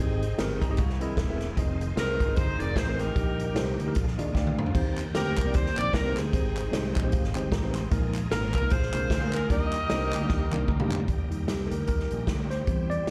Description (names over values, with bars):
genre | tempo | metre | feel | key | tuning
uptempo gospel | 151 BPM | 4/4 | swing 58% on 8ths | Eb major | A4 = 441 Hz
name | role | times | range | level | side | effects
clear saxophone section | melody | 0.0-10.9 s | C4 to Eb5 | -33 LUFS | equal | none
mellow tine electric piano | accompaniment | 0.0-13.1 s | Ab2 to C6 | -35 LUFS | equal | slapback echo
bright tonewheel organ | sustained chords | 0.0-13.1 s | D3 to G5 | -43 LUFS | equal | slow rotary speaker, chorus vibrato
fingered electric bass | bass | 0.0-13.1 s | E1 to E2 | -32 LUFS | equal | none
swinging big-band drum kit | drums | 0.2-13.1 s | crash cymbal, hi-hat, kick drum, snare drum, toms | -31 LUFS | equal | none
clean electric guitar | second line | 0.6-1.6 s | G3 to Gb4 | -43 LUFS | equal | slapback echo
group handclap | percussion | 5.0-11.0 s | none | -42 LUFS | equal | slapback echo
room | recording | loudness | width
light reverb | live gig heard through the venue's PA, club reverb | -27 LUFS | mono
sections
0.0-11.1 A section; 11.1-13.1 B section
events
tine electric piano fill 4.0-4.7, 6.7-7.9, 10.5-11.1; drum fill 4.3-4.7, 10.3-11.1; tine electric piano solo 11.1-13.1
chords
0.0 Abmaj7; 0.8 C7alt; 1.6 Fm7; 3.2 Eb/Bb; 4.0 Bb7; 4.7 Eb6; 6.3 Abmaj7; 7.9 Bb7sus4; 8.7 Bb7; 9.5 Ebmaj7; 11.1 Eb